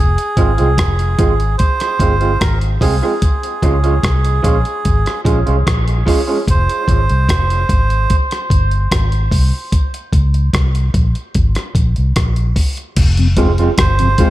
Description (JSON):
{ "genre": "dub reggae", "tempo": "74 BPM", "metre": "4/4", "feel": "straight", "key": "F minor", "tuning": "A4 = 440 Hz", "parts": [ { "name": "melodica", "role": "melody", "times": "0.0-8.2, 13.8-14.3 s", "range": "Ab4 to C5", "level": "-21 LUFS", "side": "right 3 dB", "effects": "dub echo" }, { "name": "vintage muted fingered electric bass", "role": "bass", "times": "0.0-14.1 s", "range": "F1 to Db2", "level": "-15 LUFS", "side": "equal", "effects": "none" }, { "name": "dusty soul sampler-style drum kit", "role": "drums", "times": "0.2-14.3 s", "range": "crash cymbal, hi-hat, kick drum, rim click", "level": "-16 LUFS", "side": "equal", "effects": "none" }, { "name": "electric guitar through a small old amp", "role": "accompaniment", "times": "0.4-6.4, 13.4-14.3 s", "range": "F3 to F4", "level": "-20 LUFS", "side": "right 4 dB", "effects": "dub echo" }, { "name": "mellow tonewheel organ", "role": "accompaniment", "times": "13.2-14.3 s", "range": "F2 to F4", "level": "-19 LUFS", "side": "left 3 dB", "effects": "chorus vibrato, slow rotary speaker, dub echo" } ], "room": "little or no reverb", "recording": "none", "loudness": "-12 LUFS", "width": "side -15 dB against mid", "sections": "0.0-13.0 A section; 13.0-14.3 B section", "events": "none", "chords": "0.0 Fm; 3.2 Db; 6.5 Fm; 9.7 Db5; 13.0 Fm" }